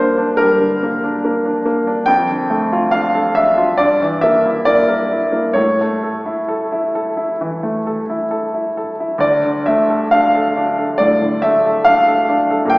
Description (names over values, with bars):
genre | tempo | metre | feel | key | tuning
classical, romantic character piece for solo piano | 68 BPM | 4/4 | uneven beats, rubato | D minor | A4 = 440 Hz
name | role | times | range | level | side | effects
bright baby grand piano | solo | 0.0-12.8 s | D2 to G5 | -13 LUFS | equal | none
room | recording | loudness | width
wet recital hall reverb, RT60 1.7 s | recorded in a church or concert hall, small speaker sound | -13 LUFS | side -23 dB against mid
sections
0.0-12.8 A section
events
none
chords
0.0 Gm; 2.1 Dm/F; 3.8 Edim/G; 5.6 A; 9.2 Dm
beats
0.39 1.24 | 2.08 2.94 3.80 4.67 | 5.56 6.48 7.39 8.31 | 9.22 10.12 10.99 11.85 | 12.71